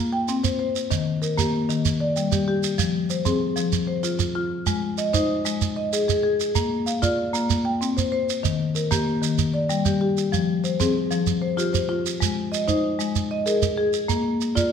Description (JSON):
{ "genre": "southern african traditional, mbira-style interlocking cycle", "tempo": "128 BPM (dotted quarters)", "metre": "12/8", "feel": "straight", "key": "F dorian", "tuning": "A4 = 440 Hz", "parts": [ { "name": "marimba with medium mallets", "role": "arpeggios", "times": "0.1-14.7 s", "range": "Eb3 to G5", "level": "-22 LUFS", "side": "left 2 dB", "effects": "none" }, { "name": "shekere", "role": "percussion", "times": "0.3-14.7 s", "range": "none", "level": "-26 LUFS", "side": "right 7 dB", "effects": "none" } ], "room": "wet recital hall reverb, RT60 1.3 s", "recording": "none", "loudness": "-21 LUFS", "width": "side -7 dB against mid", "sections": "0.0-10.3 A section; 10.3-14.7 B section", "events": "none", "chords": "0.0 C5; 0.9 Eb; 1.8 G5; 2.8 Fm; 4.7 Ab; 6.6 Bb; 7.5 C5; 8.4 Eb; 9.4 G5; 10.3 Fm; 12.2 Ab; 14.1 Bb" }